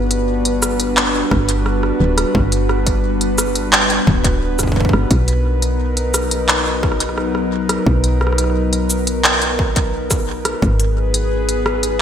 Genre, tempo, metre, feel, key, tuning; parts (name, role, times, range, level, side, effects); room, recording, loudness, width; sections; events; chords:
IDM; 87 BPM; 4/4; straight; A4 = 441 Hz
warbly tape-like pad; sustained chords; 0.0-12.0 s; F#3 to B4; -19 LUFS; equal; chorus, built-in reverb, vintage 12-bit sampler grit
woody FM bass; bass; 0.0-12.0 s; D1 to B1; -19 LUFS; equal
industrial drum kit; drums; 0.1-12.0 s; handclaps, hi-hat, rim click, shaker; -18 LUFS; equal; studio reverb, gated reverb, digital delay
electronic kick drum; drums; 1.3-10.8 s; -19 LUFS; equal; distortion, studio reverb
moderate lush hall reverb, RT60 1.8 s, digital ambience; bright 1980s-style digital production; -14 LUFS; side -9 dB against mid
0.0-12.0 A section
0.0 Gmaj7; 5.1 Bmaj7; 10.6 G#m7